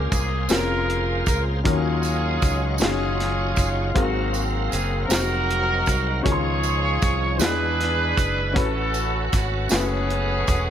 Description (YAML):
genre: slow gospel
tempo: 52 BPM (dotted quarters)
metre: 6/8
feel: straight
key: unclear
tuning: A4 = 440 Hz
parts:
  - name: warm horn section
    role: melody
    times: 0.0-10.7 s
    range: Ab3 to Db5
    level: -25 LUFS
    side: equal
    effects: none
  - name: warm upright piano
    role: accompaniment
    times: 0.0-10.7 s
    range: Ab2 to C6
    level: -28 LUFS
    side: left 4 dB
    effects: none
  - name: bright tonewheel organ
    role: sustained chords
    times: 0.0-10.7 s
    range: F3 to F5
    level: -30 LUFS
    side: right 2 dB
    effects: fast rotary speaker, overdrive, chorus vibrato
  - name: modern bright fingered electric bass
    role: bass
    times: 0.0-10.7 s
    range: E1 to E2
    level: -25 LUFS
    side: equal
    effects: none
  - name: tight funk drum kit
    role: drums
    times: 0.1-10.7 s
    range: hi-hat, kick drum, snare drum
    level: -23 LUFS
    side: equal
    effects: none
  - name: tambourine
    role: percussion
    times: 0.1-10.7 s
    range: none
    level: -33 LUFS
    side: right 7 dB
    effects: none
room: light reverb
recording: none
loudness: -20 LUFS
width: side -9 dB against mid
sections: 0.0-10.7 A section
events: none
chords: 0.0 Bbm9; 1.6 Ebm9; 4.0 Ab13; 6.3 Dbmaj9; 7.4 E7; 8.6 A69